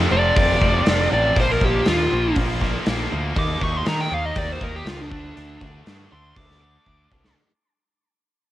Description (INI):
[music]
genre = hard rock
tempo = 120 BPM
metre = 4/4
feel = straight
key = unclear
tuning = A4 = 440 Hz
[part]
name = scooped high-gain guitar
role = riff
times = 0.0-7.4 s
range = F2 to Eb4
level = -29 LUFS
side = left 8 dB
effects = distortion, cassette tape
[part]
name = scooped high-gain guitar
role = riff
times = 0.0-7.4 s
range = F2 to Eb4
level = -29 LUFS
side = right 9 dB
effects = distortion, cassette tape
[part]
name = growling picked electric bass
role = bass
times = 0.0-7.3 s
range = F1 to Eb3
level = -25 LUFS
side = equal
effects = overdrive
[part]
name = dark smooth lead guitar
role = melody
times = 0.1-7.3 s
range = D4 to D6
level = -22 LUFS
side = equal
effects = overdrive, cassette tape
[part]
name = gated 80s drum kit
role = drums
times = 0.4-7.4 s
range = hi-hat, kick drum, snare drum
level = -23 LUFS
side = equal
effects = none
[sound]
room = light reverb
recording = home recording on cassette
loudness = -18 LUFS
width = side -14 dB against mid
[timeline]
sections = 0.0-7.4 A section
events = fade-out 0.0-7.4; lead electric guitar solo 0.0-7.4; drum fill 6.9-7.4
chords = 0.0 F; 1.4 Bb5; 3.4 Eb5; 5.1 D5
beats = 0.36 0.86 | 1.36 1.86 2.36 2.86 | 3.36 3.87 4.37 4.87 | 5.37 5.87 6.37 6.87